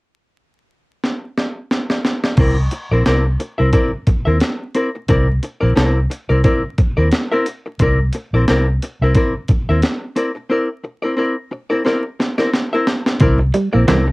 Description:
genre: funk.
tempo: 89 BPM.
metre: 4/4.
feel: swing 56% on 16ths.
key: C mixolydian.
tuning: A4 = 440 Hz.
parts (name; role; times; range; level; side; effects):
breakbeat sampler-style drum kit; drums; 1.0-14.1 s; crash cymbal, handclaps, hi-hat, kick drum, snare drum; -17 LUFS; equal; overdrive, cassette tape.
archtop guitar, miked and amplified; accompaniment; 2.4-14.1 s; C4 to E5; -18 LUFS; left 1 dB; cassette tape.
vintage muted fingered electric bass; bass; 2.4-14.1 s; Bb1 to Eb2; -16 LUFS; equal; none.
congas; percussion; 13.2-14.1 s; none; -20 LUFS; right 2 dB; none.
semi-hollow electric guitar; riff; 13.4-14.1 s; G3 to Bb3; -18 LUFS; right 2 dB; analog chorus, cassette tape.
room: light reverb.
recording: home recording on cassette, vinyl crackle.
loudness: -15 LUFS.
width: side -24 dB against mid.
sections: 0.0-2.4 A section; 2.4-13.2 B section.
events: drum fill 1.0-2.4, 11.9-13.2; break 10.5-13.2.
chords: 0.0 N.C.; 2.4 C9.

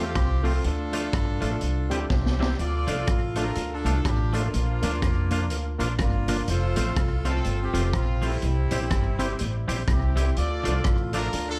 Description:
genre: ska.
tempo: 124 BPM.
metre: 4/4.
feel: swing 59% on 8ths.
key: unclear.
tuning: A4 = 440 Hz.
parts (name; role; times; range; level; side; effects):
clear horn section; melody; 0.0-11.6 s; G3 to D5; -33 LUFS; equal; slapback echo.
twangy electric guitar; accompaniment; 0.0-11.3 s; F3 to G4; -36 LUFS; equal; warbly pitch drift.
overdriven tonewheel organ; stabs; 0.0-11.4 s; G3 to D5; -36 LUFS; equal; chorus vibrato, slow rotary speaker, slapback echo.
upright bass; bass; 0.0-11.6 s; F1 to F2; -28 LUFS; equal; none.
raw garage drum kit; drums; 0.2-11.5 s; hi-hat, kick drum, rim click, snare drum; -31 LUFS; equal; none.
cabasa; percussion; 2.6-11.5 s; none; -53 LUFS; equal; none.
room: studio reverb.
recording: dark, warm production.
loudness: -25 LUFS.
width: mono.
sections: 0.0-2.6 A section; 2.6-11.6 B section.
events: drum fill 2.1-2.6.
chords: 0.0 F; 0.6 Dm; 1.6 C; 2.6 Dm; 4.5 Bb; 6.5 F; 8.4 C; 10.4 Dm.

